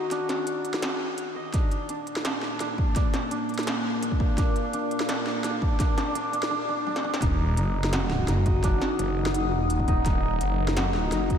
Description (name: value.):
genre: half-time drum and bass.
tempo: 169 BPM.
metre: 4/4.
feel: half-time.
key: Eb harmonic minor.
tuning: A4 = 440 Hz.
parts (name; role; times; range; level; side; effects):
deep dark ambient pad; sustained chords; 0.0-11.4 s; Bb3 to Eb6; -32 LUFS; left 1 dB; chorus, built-in reverb, sidechain pumping.
santur; arpeggios; 0.0-11.4 s; D4 to Eb5; -30 LUFS; equal; vintage 12-bit sampler grit, low-pass filter, ping-pong delay.
industrial drum kit; drums; 0.1-11.4 s; hi-hat, snare drum, toms; -31 LUFS; equal; high-pass filter on snare, high-pass filter on hats, high-pass filter on toms, high-pass filter on room.
electronic kick drum; drums; 1.5-11.4 s; none; -25 LUFS; equal; none.
phased detuned saw bass; bass; 7.2-11.4 s; Eb1 to Gb1; -25 LUFS; equal; phaser, tube saturation.
room: moderate huge ambient reverb, RT60 4.6 s.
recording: dreamy mix soaked in reverb.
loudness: -23 LUFS.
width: side -8 dB against mid.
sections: 0.0-7.2 A section; 7.2-11.4 B section.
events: build-up 0.0-7.2; filter sweep on ambient pad 0.0-7.2; filter sweep on santur 0.0-7.2; drum fill 6.9-7.2; drop 7.2-11.4.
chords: 0.0 Ebm; 1.5 Bb; 7.2 Ebm.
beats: | 0.12 0.47 0.83 1.18 | 1.54 1.89 2.25 2.60 | 2.96 3.31 3.67 4.02 | 4.38 4.73 5.09 5.44 | 5.80 6.15 6.51 6.86 | 7.22 7.57 7.93 8.28 | 8.64 8.99 9.35 9.70 | 10.06 10.41 10.77 11.12.